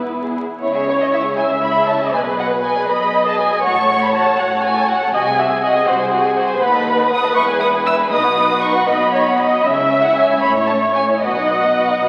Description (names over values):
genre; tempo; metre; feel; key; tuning
quick classical-period movement for string orchestra; 79 BPM (dotted quarters); 6/8; rubato; C# minor; A4 = 439 Hz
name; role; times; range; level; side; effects
rich studio violin section; second line; 0.0-12.1 s; C#4 to A5; -22 LUFS; equal; none
warm studio viola section; accompaniment; 0.0-12.1 s; B3 to E5; -20 LUFS; equal; none
rich studio cello section; bass; 0.0-12.1 s; D#2 to C#3; -28 LUFS; equal; none
warm studio double bass section; bass; 0.0-12.1 s; E1 to D#2; -36 LUFS; equal; none
rich studio violin section; melody; 0.9-12.1 s; C#5 to E6; -23 LUFS; equal; none
room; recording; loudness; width
wet scoring stage reverb, RT60 1.6 s; very old 78 rpm record, vinyl crackle; -16 LUFS; mono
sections
0.6-12.1 A section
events
none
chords
0.0 E; 0.6 C#m; 2.1 G#m/B; 3.6 F#m/A; 5.1 G#7/B#; 6.6 B7/D#; 7.4 E; 8.1 B; 9.7 C#m; 10.4 A; 11.2 B